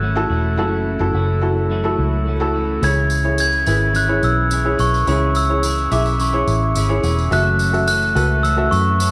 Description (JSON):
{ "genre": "piano-driven pop", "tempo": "107 BPM", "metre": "4/4", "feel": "straight", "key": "unclear", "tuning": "A4 = 436 Hz", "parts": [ { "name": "glockenspiel with rubber mallets", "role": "melody", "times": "0.0-9.1 s", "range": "C#6 to G#6", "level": "-23 LUFS", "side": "equal", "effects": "none" }, { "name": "felt-muted upright piano", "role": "accompaniment", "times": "0.0-9.1 s", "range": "C#3 to E5", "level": "-24 LUFS", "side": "equal", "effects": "none" }, { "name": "twelve-string electric guitar", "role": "riff", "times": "0.0-9.1 s", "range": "F#2 to A4", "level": "-29 LUFS", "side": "equal", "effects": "spring reverb" }, { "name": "vintage muted fingered electric bass", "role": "bass", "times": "0.0-9.1 s", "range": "E1 to F#2", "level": "-22 LUFS", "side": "equal", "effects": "none" }, { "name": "tambourine", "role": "percussion", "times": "2.8-9.1 s", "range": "none", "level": "-33 LUFS", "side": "equal", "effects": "none" } ], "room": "moderate echo chamber reverb, RT60 1.3 s, studio reverb", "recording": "none", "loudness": "-18 LUFS", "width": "mono", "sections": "0.0-2.8 A section; 2.8-9.1 B section", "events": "none", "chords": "0.0 F#m7; 2.8 C#m; 7.3 F#m7" }